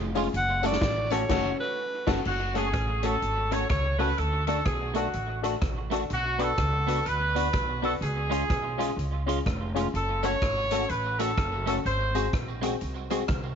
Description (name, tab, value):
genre	ska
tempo	125 BPM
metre	4/4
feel	swing 62% on 8ths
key	F# harmonic minor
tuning	A4 = 440 Hz
part	bright alto saxophone	melody	0.0-2.2 s	G#4 to F#5	-29 LUFS	equal	none
part	upright bass	bass	0.0-13.6 s	E#1 to D2	-31 LUFS	equal	none
part	warm upright piano	stabs	0.1-13.2 s	B#3 to B4	-32 LUFS	left 12 dB	none
part	clean electric guitar	accompaniment	0.2-13.2 s	G#3 to F#4	-34 LUFS	right 12 dB	ensemble chorus, tape echo
part	swinging big-band drum kit	drums	0.2-13.4 s	crash cymbal, hi-hat, kick drum, rim click, snare drum	-32 LUFS	equal	tape echo
part	tambourine	percussion	0.2-1.2, 10.2-13.2 s	none	-49 LUFS	right 13 dB	none
part	bright horn section	melody	2.3-12.3 s	F#4 to C#5	-29 LUFS	right 1 dB	none
room	light reverb, small room ambience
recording	1960s-style stereo with parts hard left and right, nothing above 7.6 kHz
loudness	-25 LUFS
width	side -7 dB against mid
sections	0.0-2.3 A section; 2.3-13.6 B section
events	alto saxophone solo 0.0-2.3; band accent 1.3-2.3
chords	0.3 F#m; 4.2 D; 6.1 Bm; 8.0 C#; 9.9 F#m; 11.9 G#7